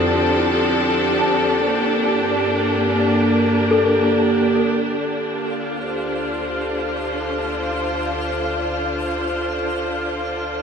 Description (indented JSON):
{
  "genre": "ambient",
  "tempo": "free time",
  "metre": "none",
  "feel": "none",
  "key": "D minor",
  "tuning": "A4 = 439 Hz",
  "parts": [
    { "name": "rich studio string section", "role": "sustained chords", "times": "0.0-10.6 s", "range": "D3 to C5", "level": "-19 LUFS", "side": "equal", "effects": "none" },
    { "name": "small celesta", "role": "arpeggios", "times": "0.0-5.0 s", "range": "E4 to A5", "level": "-25 LUFS", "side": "left 2 dB", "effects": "diffuse ambient delay" },
    { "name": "deep rumbling drone", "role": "bass", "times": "0.0-10.6 s", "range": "D2 to G2", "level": "-32 LUFS", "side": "left 1 dB", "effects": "built-in reverb" },
    { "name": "pedal harmonium", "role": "drone", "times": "0.0-10.6 s", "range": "D3", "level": "-30 LUFS", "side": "left 2 dB", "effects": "none" },
    { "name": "twinkling granular texture", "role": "texture", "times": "5.2-10.6 s", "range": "F5", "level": "-28 LUFS", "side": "equal", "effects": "built-in reverb" }
  ],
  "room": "wet huge ambient reverb, RT60 7.8 s",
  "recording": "dreamy mix soaked in reverb, cassette tape",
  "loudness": "-17 LUFS",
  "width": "side -6 dB against mid",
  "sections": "0.0-5.0 A section; 5.0-10.6 B section",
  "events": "filter sweep on string section 0.0-5.0",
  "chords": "0.0 F6; 1.6 Gm; 5.0 Dm7"
}